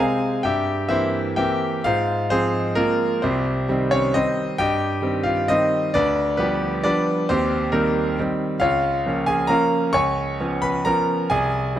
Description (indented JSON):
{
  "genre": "classical, piano waltz",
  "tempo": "133 BPM",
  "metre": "3/4",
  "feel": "rubato",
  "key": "unclear",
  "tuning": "A4 = 438 Hz",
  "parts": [
    { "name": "bright concert grand piano", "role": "solo", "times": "0.0-11.8 s", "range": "C2 to Db6", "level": "-19 LUFS", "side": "equal", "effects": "none" }
  ],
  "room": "moderate concert hall reverb, RT60 2.3 s",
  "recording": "close, detailed microphones",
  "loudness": "-19 LUFS",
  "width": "side -11 dB against mid",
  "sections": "0.0-11.8 A section",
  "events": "none",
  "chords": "0.4 C7/G; 1.8 Fm/Ab; 3.2 Cm; 5.9 G7/D; 7.3 Cm/Eb; 8.6 Bbm/Db; 9.9 Db7",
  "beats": "| 0.44 0.90 1.38 | 1.84 2.30 2.77 | 3.23 3.68 4.14 | 4.58 5.03 5.49 | 5.93 6.38 6.83 | 7.28 7.71 8.17 | 8.60 9.05 9.50 | 9.95 10.39 10.85 | 11.30 11.75"
}